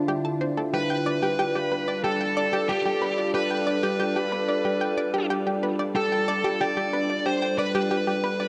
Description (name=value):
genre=ambient, sequencer-driven space music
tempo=92 BPM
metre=4/4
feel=straight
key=unclear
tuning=A4 = 439 Hz
part: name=evolving wavetable pad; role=sustained chords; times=0.0-8.5 s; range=D3 to D5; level=-30 LUFS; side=equal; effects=chorus, built-in reverb
part: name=analog pluck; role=riff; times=0.1-8.5 s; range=G4 to A5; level=-31 LUFS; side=equal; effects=chorus, tape echo
part: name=smooth overdriven lead guitar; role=melody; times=0.7-8.5 s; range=G4 to D5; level=-29 LUFS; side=equal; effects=tape echo
room=wet plate reverb, RT60 3.2 s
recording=dark, warm production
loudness=-25 LUFS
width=mono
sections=0.0-8.5 A section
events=none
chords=0.0 Dm7; 0.7 G7